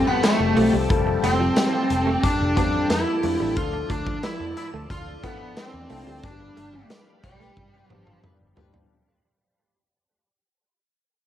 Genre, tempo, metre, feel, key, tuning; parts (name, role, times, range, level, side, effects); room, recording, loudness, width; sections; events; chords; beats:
1980s-style pop; 90 BPM; 4/4; straight; G mixolydian; A4 = 440 Hz
smooth overdriven lead guitar; melody; 0.0-8.2 s; G3 to F4; -24 LUFS; equal; cassette tape
glassy synth bell; second line; 0.0-8.2 s; G5 to F6; -37 LUFS; left 8 dB; chorus, cassette tape, tape echo
dark baby grand piano; accompaniment; 0.0-8.9 s; F3 to A4; -28 LUFS; left 8 dB; cassette tape
phased analog pad; sustained chords; 0.0-8.9 s; F3 to B5; -34 LUFS; right 2 dB; phaser, chorus, cassette tape
direct-recorded clean electric guitar; riff; 0.2-8.8 s; F3 to B3; -30 LUFS; right 7 dB; lush chorus, cassette tape
big rock drum kit; drums; 0.2-8.9 s; hi-hat, kick drum, snare drum, tambourine, toms; -26 LUFS; equal; cassette tape
vintage muted fingered electric bass; bass; 0.4-8.8 s; F1 to G2; -28 LUFS; equal
warm horn section; stabs; 7.4-8.8 s; F4 to B4; -69 LUFS; left 5 dB
moderate studio ambience, RT60 0.5 s; home recording on cassette; -19 LUFS; side -11 dB against mid
0.0-8.9 A section
fade-out 0.0-8.9; band accent 6.2-8.9; drum fill 7.6-8.9
0.0 Fadd9; 3.6 Dmadd9; 6.2 G7
0.24 | 0.90 1.57 2.24 2.90 | 3.57 4.24 4.90 5.57 | 6.24 6.90 7.57 8.24